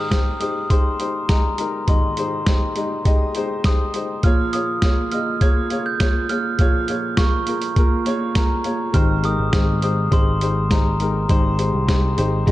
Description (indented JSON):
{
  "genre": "piano-driven pop",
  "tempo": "102 BPM",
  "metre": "4/4",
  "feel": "straight",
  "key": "Ab major",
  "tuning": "A4 = 439 Hz",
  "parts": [
    { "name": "glockenspiel with rubber mallets", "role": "melody", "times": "0.0-12.5 s", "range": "Bb5 to Ab6", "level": "-25 LUFS", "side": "right 1 dB", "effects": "none" },
    { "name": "warm upright piano", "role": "accompaniment", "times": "0.0-12.5 s", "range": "Ab2 to Eb5", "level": "-24 LUFS", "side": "left 1 dB", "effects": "none" },
    { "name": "boom bap sampler-style drum kit", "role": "drums", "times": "0.1-12.5 s", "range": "hi-hat, kick drum, snare drum", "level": "-18 LUFS", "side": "equal", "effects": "none" },
    { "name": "picked electric bass", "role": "bass", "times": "8.9-12.5 s", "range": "Ab1 to C2", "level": "-21 LUFS", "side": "equal", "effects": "none" }
  ],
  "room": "light reverb",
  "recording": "dark, warm production, nothing above 10.7 kHz",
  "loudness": "-17 LUFS",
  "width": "side -16 dB against mid",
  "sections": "0.0-12.5 A section",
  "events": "none",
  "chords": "0.0 Abmaj7; 4.2 Bbm7; 8.9 Abmaj7"
}